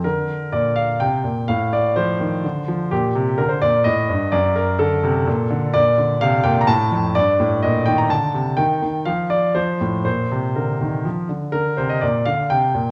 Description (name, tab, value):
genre	classical-period piano sonatina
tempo	126 BPM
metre	3/4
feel	straight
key	Bb major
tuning	A4 = 440 Hz
part	clear concert grand piano	solo	0.0-12.9 s	F2 to Bb5	-19 LUFS	equal	none
room	moderate recital hall reverb, RT60 1.3 s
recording	worn, warbling old tape, cassette tape, warbly pitch drift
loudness	-19 LUFS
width	mono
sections	0.0-11.5 A section; 11.5-12.9 A section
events	none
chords	0.0 Bb; 1.5 F7/A; 2.4 Dm7; 2.9 Gm/Bb; 4.3 D7/F#; 5.3 Bbmaj7; 5.7 Bb69; 6.7 F/A; 7.2 Eb/G; 8.1 D5; 8.6 N.C.; 9.6 F; 10.1 Bb